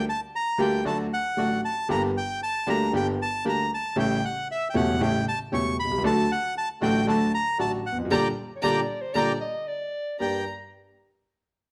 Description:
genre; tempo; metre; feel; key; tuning
tango; 116 BPM; 4/4; rubato; G harmonic minor; A4 = 440 Hz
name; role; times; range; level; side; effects
bandoneon; melody; 0.0-10.4 s; D5 to C#6; -30 LUFS; equal; none
clear concert grand piano; accompaniment; 0.0-10.4 s; E1 to G4; -28 LUFS; equal; none
bandoneon; stabs; 0.0-10.4 s; D3 to G4; -37 LUFS; equal; none
warm violin; second line; 8.1-10.4 s; Bb5; -34 LUFS; equal; none
clear clarinet; second line; 8.6-10.4 s; C5 to Eb5; -34 LUFS; equal; none
room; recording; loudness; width
wet large studio reverb, RT60 1.1 s; none; -26 LUFS; mono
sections
0.0-10.2 A section; 10.2-11.7 B section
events
band accent 8.1-10.2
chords
0.0 Gm; 0.8 D; 1.9 Gm; 4.0 A7; 6.0 D; 8.1 Gm; 9.7 N.C.; 10.2 Gm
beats
0.33 0.85 1.37 | 1.89 2.41 2.93 3.45 | 3.97 4.48 5.00 5.51 | 6.03 6.55 7.07 7.58 | 8.10 8.62 9.14 9.67 | 10.19

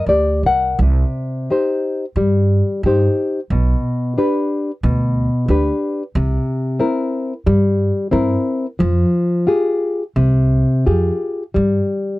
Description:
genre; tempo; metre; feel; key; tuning
fado-style ballad; 89 BPM; 4/4; rubato; C harmonic minor; A4 = 442 Hz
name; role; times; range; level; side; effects
nylon-string guitar; accompaniment; 0.0-12.2 s; B2 to F#5; -16 LUFS; left 1 dB; none
upright bass; bass; 0.0-11.8 s; B1 to G2; -18 LUFS; right 1 dB; none
room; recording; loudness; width
light reverb; dry, close 1970s-style studio recording; -15 LUFS; side -18 dB against mid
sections
0.8-12.2 A section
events
nylon-string guitar fill 0.0-0.8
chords
0.0 Gm; 0.8 Cm; 3.5 G/B; 6.1 C7; 8.8 Fmadd9; 11.6 N.C.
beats
0.07 | 0.80 1.50 2.17 2.85 | 3.52 4.18 4.84 5.49 | 6.15 6.80 7.46 8.12 | 8.79 9.47 10.16 10.86 | 11.56

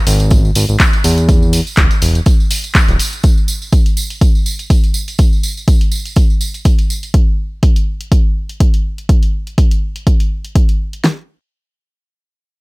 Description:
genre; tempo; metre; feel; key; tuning
deep house; 123 BPM; 4/4; swing 55% on 16ths; unclear; A4 = 437 Hz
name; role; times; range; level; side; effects
smooth synth bass; bass; 0.1-3.0 s; D1 to E2; -13 LUFS; equal; sidechain pumping
punchy analog drum machine; drums; 0.1-11.0 s; handclaps, hi-hat; -20 LUFS; equal; none
tambourine; percussion; 0.1-7.1 s; none; -24 LUFS; right 4 dB; none
deep house drum kit; drums; 0.3-11.2 s; kick drum, snare drum; -12 LUFS; equal; overdrive
room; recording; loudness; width
little or no reverb; none; -11 LUFS; side -24 dB against mid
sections
0.0-11.0 A section; 11.0-12.6 B section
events
none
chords
none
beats
0.31 0.80 | 1.29 1.77 2.26 2.75 | 3.24 3.73 4.21 4.70 | 5.19 5.68 6.16 6.65 | 7.14 7.63 8.12 8.60 | 9.09 9.58 10.07 10.55 | 11.04

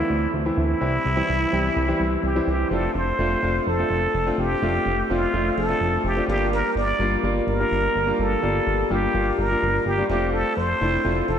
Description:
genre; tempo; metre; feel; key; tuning
1980s-style pop; 126 BPM; 4/4; straight; unclear; A4 = 440 Hz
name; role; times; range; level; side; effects
trumpet with plunger mute; melody; 0.0-11.4 s; E4 to D5; -24 LUFS; equal; tape echo
clear grand piano; accompaniment; 0.0-11.4 s; E3 to E5; -24 LUFS; left 1 dB; none
chorused synth bass; bass; 0.0-11.4 s; F1 to D2; -26 LUFS; equal; none
room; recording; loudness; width
wet lush hall reverb, RT60 2.5 s; dreamy mix soaked in reverb; -20 LUFS; side -8 dB against mid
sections
0.0-2.7 A section; 2.7-11.4 B section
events
none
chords
0.0 Am/D; 0.8 C; 2.7 F6; 6.3 Gm7; 10.1 F6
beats
0.33 | 0.81 1.29 1.76 2.24 | 2.71 3.19 3.67 4.14 | 4.62 5.09 5.57 6.05 | 6.52 7.00 7.48 7.95 | 8.43 8.90 9.38 9.86 | 10.33 10.81 11.29

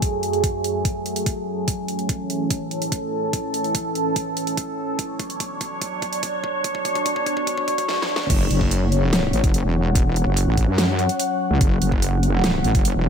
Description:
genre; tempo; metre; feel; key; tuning
heavy wobble dubstep; 145 BPM; 4/4; half-time; F# minor; A4 = 440 Hz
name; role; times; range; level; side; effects
evolving wavetable pad; sustained chords; 0.0-13.1 s; F#2 to F#5; -24 LUFS; equal; phaser, built-in reverb, sidechain pumping
dubstep drum kit; drums; 0.0-12.9 s; crash cymbal, hi-hat, snare drum; -26 LUFS; right 1 dB; overdrive
electronic kick drum; drums; 0.0-12.8 s; none; -23 LUFS; equal; none
wobble bass; bass; 8.3-13.1 s; E1 to F#2; -20 LUFS; equal; chorus, overdrive
room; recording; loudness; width
light reverb; high-pass filter; -19 LUFS; side -7 dB against mid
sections
0.0-8.3 A section; 8.3-13.1 B section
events
build-up 0.0-8.3; filter sweep on ambient pad 0.0-8.3; drum fill 1.7-7.9, 7.9-8.3; drop 8.3-13.1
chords
0.0 F#madd9; 1.7 A; 5.0 Bmadd9; 8.3 F#5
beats
| 0.02 0.44 0.85 1.26 | 1.68 2.09 2.51 2.92 | 3.33 3.75 4.16 4.58 | 4.99 5.40 5.82 6.23 | 6.64 7.06 7.47 7.89 | 8.30 8.71 9.13 9.54 | 9.95 10.37 10.78 11.20 | 11.61 12.02 12.44 12.85

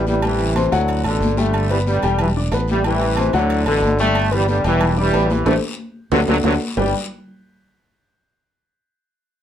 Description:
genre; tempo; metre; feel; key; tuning
latin, salsa; 184 BPM; 4/4; straight; G major; A4 = 440 Hz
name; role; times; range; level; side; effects
brilliant trombone section; melody; 0.0-6.9 s; A2 to A3; -20 LUFS; right 1 dB; none
clear grand piano; accompaniment; 0.0-6.9 s; F#3 to D6; -22 LUFS; left 5 dB; none
modern bright fingered electric bass; bass; 0.0-6.9 s; E1 to D2; -21 LUFS; right 1 dB; none
congas; percussion; 0.1-6.9 s; none; -26 LUFS; left 2 dB; none
guiro; percussion; 0.1-6.8 s; none; -35 LUFS; left 6 dB; none
agogo bells and timbales; percussion; 0.2-6.8 s; none; -27 LUFS; right 6 dB; none
room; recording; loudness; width
moderate studio reverb, RT60 0.5 s; none; -16 LUFS; side -10 dB against mid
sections
0.0-6.8 A section; 6.8-8.1 B section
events
band accent 5.5-6.8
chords
0.2 Am7; 0.9 D; 1.5 G; 2.2 Em7; 2.8 Am7; 3.5 D; 4.2 G; 4.8 Em7; 5.5 Am7; 6.1 D7; 6.8 G5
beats
| 0.23 0.56 0.89 1.21 | 1.54 1.87 2.19 2.52 | 2.85 3.17 3.50 3.83 | 4.16 4.48 4.81 5.14 | 5.46 5.79 6.12 6.45 | 6.77

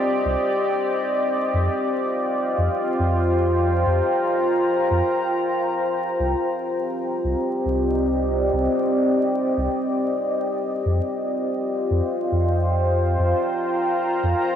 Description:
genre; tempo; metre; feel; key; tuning
ambient dub; 103 BPM; 4/4; swing 58% on 16ths; unclear; A4 = 440 Hz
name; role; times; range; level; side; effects
deep dark ambient pad; sustained chords; 0.0-14.6 s; C4 to Bb5; -20 LUFS; equal; chorus, built-in reverb, cassette tape
soft dub sub bass; bass; 0.2-14.3 s; C2 to F2; -22 LUFS; equal; none
room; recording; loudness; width
moderate lush hall reverb, RT60 2.4 s; home recording on cassette, vinyl crackle; -20 LUFS; side -9 dB against mid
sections
0.0-14.6 A section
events
break 5.0-6.2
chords
0.0 Cmadd9; 1.5 F7sus4; 6.2 Cm9; 10.9 F7sus4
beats
0.37 0.96 | 1.54 2.12 2.70 3.29 | 3.87 4.45 5.03 5.62 | 6.20 6.78 7.36 7.95 | 8.53 9.11 9.69 10.28 | 10.86 11.44 12.02 12.61 | 13.19 13.77 14.35

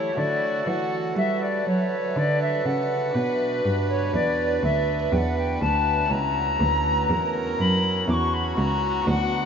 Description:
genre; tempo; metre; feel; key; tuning
classical, baroque-style sonata movement with continuo; 61 BPM; 3/4; straight; unclear; A4 = 439 Hz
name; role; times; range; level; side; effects
alto recorder; melody; 0.0-9.5 s; B4 to D6; -25 LUFS; left 3 dB; none
warm violin; second line; 0.0-9.5 s; E4 to B4; -28 LUFS; right 5 dB; none
chamber organ, cornet; accompaniment; 0.0-9.5 s; C#2 to B4; -29 LUFS; equal; none
rich cello; bass; 0.0-9.5 s; C#2 to G3; -27 LUFS; right 1 dB; none
room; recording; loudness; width
wet cathedral reverb, RT60 7.0 s; in a vast, echoing space, nothing above 7.5 kHz; -21 LUFS; side -7 dB against mid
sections
0.0-9.5 A section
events
none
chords
0.2 D; 3.2 Bm; 6.1 F#7/C#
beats
| 0.17 1.17 2.17 | 3.16 4.14 5.13 | 6.11 7.10 8.09 | 9.07

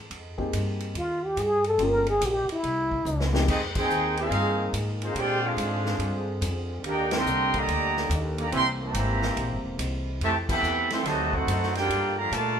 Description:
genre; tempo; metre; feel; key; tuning
jazz, big band swing; 143 BPM; 4/4; swing 65% on 8ths; unclear; A4 = 440 Hz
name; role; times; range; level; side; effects
upright bass; bass; 0.1-12.6 s; E1 to Bb2; -30 LUFS; equal; none
swinging big-band drum kit; drums; 0.1-12.4 s; crash cymbal, hi-hat, kick drum, ride cymbal, snare drum; -34 LUFS; equal; none
dark baby grand piano; accompaniment; 0.4-3.5 s; F2 to Ab4; -31 LUFS; left 3 dB; none
trombone with plunger mute; melody; 1.0-3.4 s; E4 to Bb4; -24 LUFS; equal; none
mellow trumpet section; melody; 3.5-12.6 s; C4 to C6; -27 LUFS; right 1 dB; none
bright trombone section; second line; 3.5-12.6 s; C3 to Ab4; -30 LUFS; right 2 dB; none
clear trombone section; sustained chords; 3.5-12.6 s; D3 to Ab4; -36 LUFS; equal; none
room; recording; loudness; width
moderate large studio reverb, RT60 1.1 s; minimal, uncompressed stereo recording; -24 LUFS; side -8 dB against mid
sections
0.0-3.5 A section; 3.5-12.6 B section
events
trombone solo 0.0-3.5; drum fill 3.1-3.5; band accent 3.7, 7.1, 10.4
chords
0.1 Fm11; 1.8 Gm7b5; 2.6 C7b9; 3.5 Fm11; 5.2 Bb13; 6.8 Ebmaj7; 8.5 C7; 10.2 Fmaj9; 11.1 D7b9; 11.9 Gm7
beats
| 0.11 0.53 0.95 1.38 | 1.80 2.22 2.64 3.06 | 3.48 3.90 4.32 4.74 | 5.16 5.58 6.01 6.43 | 6.85 7.27 7.69 8.11 | 8.53 8.95 9.37 9.79 | 10.21 10.63 11.05 11.48 | 11.90 12.32

